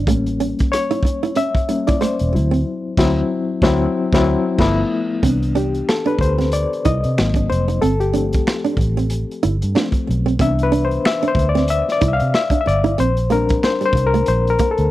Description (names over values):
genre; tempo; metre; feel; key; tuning
R&B, neo-soul; 93 BPM; 4/4; swing 57% on 16ths; C major; A4 = 438 Hz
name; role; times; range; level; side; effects
flamenco guitar; second line; 0.0-14.7 s; G3 to E4; -21 LUFS; right 6 dB; none
overdriven reed electric piano; accompaniment; 0.0-14.9 s; E3 to F5; -19 LUFS; left 4 dB; fast tremolo
vintage muted fingered electric bass; bass; 0.0-14.9 s; E1 to C3; -19 LUFS; equal; none
crunchy breakbeat drum kit; drums; 0.1-14.9 s; crash cymbal, finger snaps, hi-hat, kick drum, rim click, snare drum; -20 LUFS; equal; none
room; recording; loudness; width
little or no reverb; dry, close 1970s-style studio recording; -15 LUFS; side -15 dB against mid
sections
0.0-5.2 A section; 5.2-14.9 B section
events
reed electric piano solo 0.0-5.2, 5.2-14.9; drums muted 2.7-5.2; band accent 2.7-5.2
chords
0.1 A7b9; 2.3 D9; 4.6 G13; 5.2 Cmaj9; 7.2 Ab9; 7.8 G9sus4; 10.4 Cmaj9; 13.0 Bb69